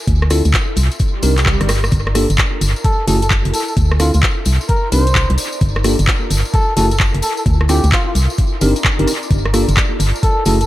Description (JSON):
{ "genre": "UK garage, two-step garage", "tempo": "130 BPM", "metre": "4/4", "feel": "swing 64% on 16ths", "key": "G minor", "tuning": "A4 = 440 Hz", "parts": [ { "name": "tambourine", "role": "percussion", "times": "0.0-10.7 s", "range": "none", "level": "-28 LUFS", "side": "left 2 dB", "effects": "tape echo" }, { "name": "ethereal airy pad", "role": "texture", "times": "0.0-10.7 s", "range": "Eb4 to C6", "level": "-29 LUFS", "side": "left 1 dB", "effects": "ensemble chorus, built-in reverb, sidechain pumping" }, { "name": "organ-like FM bass", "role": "bass", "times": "0.1-10.7 s", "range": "F#1 to D2", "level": "-15 LUFS", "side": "equal", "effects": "none" }, { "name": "electronic kick drum", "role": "drums", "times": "0.1-10.3 s", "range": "none", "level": "-17 LUFS", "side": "equal", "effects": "none" }, { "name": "house drum kit", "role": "drums", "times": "0.1-10.7 s", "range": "handclaps, hi-hat, rim click", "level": "-20 LUFS", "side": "equal", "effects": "tape echo" }, { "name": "bell-like tine electric piano", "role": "stabs", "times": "0.3-10.6 s", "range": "A3 to Bb4", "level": "-20 LUFS", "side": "equal", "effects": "analog chorus, low-pass filter, tape echo" }, { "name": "swell", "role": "sound effects", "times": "1.1-1.9 s", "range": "none", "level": "-25 LUFS", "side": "right 3 dB", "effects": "none" }, { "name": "trumpet with cup mute", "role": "melody", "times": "2.8-10.7 s", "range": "F4 to C5", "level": "-21 LUFS", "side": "equal", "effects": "tape echo" } ], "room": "light reverb, digital ambience", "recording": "echo-heavy mix, vinyl crackle", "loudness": "-12 LUFS", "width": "side -15 dB against mid", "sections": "0.0-10.7 A section", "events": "fade-in on ambient pad 0.0-10.7; swell 1.1-1.9; drum fill 1.5-1.9", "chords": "0.1 Dm9; 0.8 Cm9; 1.9 Gm9; 2.8 F#m9; 3.8 Dm9; 4.5 Cm9; 5.6 Gm9; 6.5 F#m9; 7.5 Dm9; 8.2 Cm9; 9.3 Gm9" }